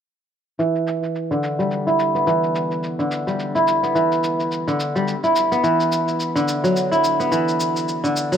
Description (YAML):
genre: organic downtempo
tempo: 107 BPM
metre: 4/4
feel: swing 58% on 16ths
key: E minor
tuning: A4 = 439 Hz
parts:
  - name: kora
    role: arpeggios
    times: 0.6-8.4 s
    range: D3 to E4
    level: -18 LUFS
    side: equal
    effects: low-pass filter, digital delay
  - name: shaker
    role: drums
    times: 0.6-8.4 s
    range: none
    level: -32 LUFS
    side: equal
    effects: low-pass filter on perc, small room ambience
room: moderate huge ambient reverb, RT60 6.6 s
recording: none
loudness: -18 LUFS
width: side -8 dB against mid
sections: 0.6-8.4 A section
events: filter sweep on drum 0.6-8.4; filter sweep on kora 0.6-8.4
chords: 0.6 Em7; 5.1 Bm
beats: | 0.59 1.15 1.71 2.27 | 2.83 3.39 3.95 4.51 | 5.07 5.63 6.20 6.76 | 7.32 7.88